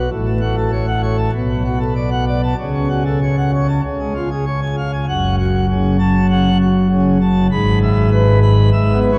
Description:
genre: classical, organ toccata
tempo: 98 BPM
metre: 4/4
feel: straight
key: F# minor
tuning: A4 = 442 Hz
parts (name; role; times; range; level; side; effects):
- pipe organ, plenum; solo; 0.0-9.2 s; F#1 to B5; -16 LUFS; equal; none
room: wet cathedral reverb, RT60 5.0 s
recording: worn, warbling old tape, cassette tape, vinyl crackle, warbly pitch drift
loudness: -16 LUFS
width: mono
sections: 0.0-5.1 A section; 5.1-9.2 B section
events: none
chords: 0.1 F#m/A; 1.3 Bm7; 2.6 F#m/C#; 3.8 C#; 5.1 F#m; 7.5 E/G#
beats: | 0.12 0.73 1.34 1.95 | 2.58 3.21 3.83 4.46 | 5.08 5.69 6.30 6.91 | 7.52 8.12 8.73

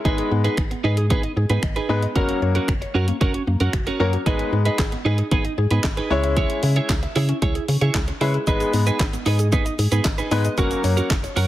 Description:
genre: dance-pop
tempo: 114 BPM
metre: 4/4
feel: straight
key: G# minor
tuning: A4 = 440 Hz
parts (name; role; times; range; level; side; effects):
- clear concert grand piano; accompaniment; 0.0-11.1 s; F#3 to C#5; -25 LUFS; left 4 dB; sidechain pumping
- mallet-like synth pluck; arpeggios; 0.0-11.5 s; A#3 to E5; -31 LUFS; left 2 dB; chorus, sidechain pumping, digital delay
- twelve-string electric guitar; riff; 0.0-11.5 s; C#4 to C#5; -26 LUFS; right 4 dB; lush chorus
- organ-like FM bass; bass; 0.1-11.5 s; F#1 to C#3; -22 LUFS; equal; sidechain pumping
- house drum kit; drums; 0.1-11.5 s; finger snaps, handclaps, hi-hat, kick drum, shaker, snare drum; -24 LUFS; equal; none
room: light reverb, digital ambience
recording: heavily compressed radio sound, multiband compression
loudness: -18 LUFS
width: side -14 dB against mid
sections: 0.0-11.5 A section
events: none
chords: 0.1 G#m; 2.2 F#; 4.3 G#m; 6.1 C#m; 8.5 G#m; 10.6 F#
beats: | 0.05 0.58 1.10 1.63 | 2.16 2.68 3.21 3.74 | 4.26 4.79 5.32 5.84 | 6.37 6.89 7.42 7.95 | 8.47 9.00 9.53 10.05 | 10.58 11.11

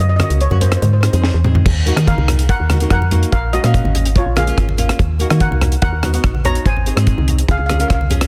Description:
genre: calypso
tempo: 144 BPM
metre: 4/4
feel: straight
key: unclear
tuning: A4 = 440 Hz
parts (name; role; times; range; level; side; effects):
- steel pan; melody; 0.0-8.0 s; F4 to Bb5; -25 LUFS; equal; tape echo
- woody FM bass; bass; 0.0-8.2 s; Ab1 to Eb3; -18 LUFS; equal; none
- nylon-string guitar; accompaniment; 0.2-8.3 s; Bb3 to F5; -26 LUFS; equal; none
- deep reggae drum kit; drums; 0.2-8.3 s; crash cymbal, hi-hat, kick drum, rim click, snare drum, toms; -20 LUFS; equal; soft clipping on snare
- congas; percussion; 0.2-8.2 s; none; -26 LUFS; equal; none
room: little or no reverb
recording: dense, heavily limited modern master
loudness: -15 LUFS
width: mono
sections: 0.0-1.7 A section; 1.7-8.3 B section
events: drum fill 1.2-1.7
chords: 0.0 Gb; 0.8 Ab; 1.7 Ebmadd9; 3.3 Bbm; 5.0 Ebm; 5.8 Cbmaj7/Eb; 6.7 Ab; 7.5 Dbmaj7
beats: 0.41 0.82 1.24 | 1.66 2.07 2.49 2.91 | 3.32 3.74 4.15 4.57 | 4.99 5.40 5.82 6.23 | 6.65 7.07 7.48 7.90

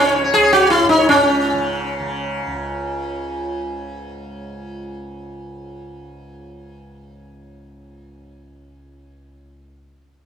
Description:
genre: indian classical, Hindustani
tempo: 159 BPM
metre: 5/4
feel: straight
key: unclear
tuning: A4 = 440 Hz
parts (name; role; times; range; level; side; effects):
- sitar; melody; 0.0-4.4 s; C#4 to C#5; -14 LUFS; equal; none
- tanpura; drone; 0.0-9.6 s; C#2 to C#3; -28 LUFS; right 1 dB; none
room: wet large studio reverb, RT60 1.4 s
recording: band playing live in one room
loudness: -15 LUFS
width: side -8 dB against mid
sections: 0.0-1.1 A section; 1.1-3.0 B section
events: none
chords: none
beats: 0.32 0.70 | 1.08 1.46 1.83 2.21 2.59

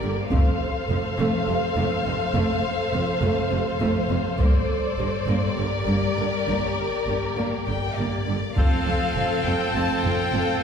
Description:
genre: cinematic, epic orchestral film score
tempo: 204 BPM (eighths)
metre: 7/8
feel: straight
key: unclear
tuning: A4 = 441 Hz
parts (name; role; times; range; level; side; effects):
- warm symphonic violin section; second line; 0.0-10.6 s; A4 to F5; -27 LUFS; left 4 dB; none
- rich symphonic viola section; accompaniment; 0.0-10.6 s; C3 to A4; -28 LUFS; right 2 dB; none
- dark studio double bass section; bass; 0.0-10.4 s; F1 to G1; -28 LUFS; right 2 dB; none
- warm symphonic cello section; bass; 0.0-10.4 s; F2 to G2; -29 LUFS; right 1 dB; none
- taiko ensemble; drums; 0.3-9.7 s; none; -23 LUFS; equal; none
- rich symphonic violin section; melody; 7.7-10.6 s; D5 to A5; -29 LUFS; left 4 dB; none
- pipe organ, clarinet reed; sustained chords; 8.6-10.6 s; C4 to C5; -28 LUFS; equal; none
room: wet scoring stage reverb, RT60 1.7 s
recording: heard from further back in the room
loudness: -21 LUFS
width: side -7 dB against mid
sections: 0.0-8.6 A section; 8.6-10.6 B section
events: build-up 0.0-8.6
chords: 0.3 F; 4.4 Gm; 8.6 F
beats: 0.01 | 0.30 0.60 0.89 1.18 1.47 1.76 2.06 | 2.35 2.64 2.93 3.22 3.51 3.81 4.10 | 4.39 4.68 4.98 5.27 5.57 5.86 6.16 | 6.46 6.76 7.07 7.37 7.67 7.97 8.27 | 8.56 8.86 9.15 9.45 9.74 10.04 10.33 | 10.62

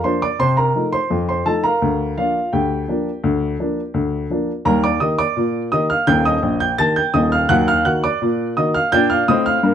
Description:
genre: ragtime piano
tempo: 84 BPM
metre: 2/4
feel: straight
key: Bb major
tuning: A4 = 440 Hz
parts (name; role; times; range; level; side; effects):
- warm upright piano; solo; 0.0-9.7 s; Eb1 to A6; -16 LUFS; equal; none
room: moderate studio reverb, RT60 0.6 s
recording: none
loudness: -16 LUFS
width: side -9 dB against mid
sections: 0.0-9.7 A section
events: none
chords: 0.4 F7/C; 1.8 Bb/D; 4.7 Eb; 7.5 Ebm; 8.9 Bb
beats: | 0.40 1.11 | 1.82 2.53 | 3.24 3.95 | 4.66 5.37 | 6.08 6.79 | 7.50 8.21 | 8.92 9.63

